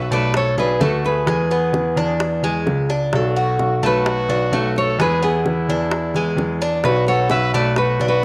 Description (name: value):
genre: latin, Cuban son and guajira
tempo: 129 BPM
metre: 4/4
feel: straight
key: unclear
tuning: A4 = 440 Hz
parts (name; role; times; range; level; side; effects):
- Cuban tres; arpeggios; 0.0-8.2 s; G#3 to F#4; -25 LUFS; equal; none
- warm baby grand piano; bass; 0.0-8.2 s; B1 to E2; -23 LUFS; equal; none
- nylon-string guitar; melody; 0.1-8.2 s; G#4 to E5; -24 LUFS; equal; slapback echo
- bright trumpet; second line; 0.1-8.2 s; E4 to B4; -30 LUFS; equal; slapback echo
- bongos; percussion; 0.3-8.2 s; none; -29 LUFS; equal; none
room: moderate echo chamber reverb, RT60 1.9 s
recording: none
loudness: -19 LUFS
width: mono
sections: 0.0-8.2 A section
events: none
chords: 0.0 Bm7; 1.3 E7; 3.1 Bm7; 5.0 E7; 6.8 Bm7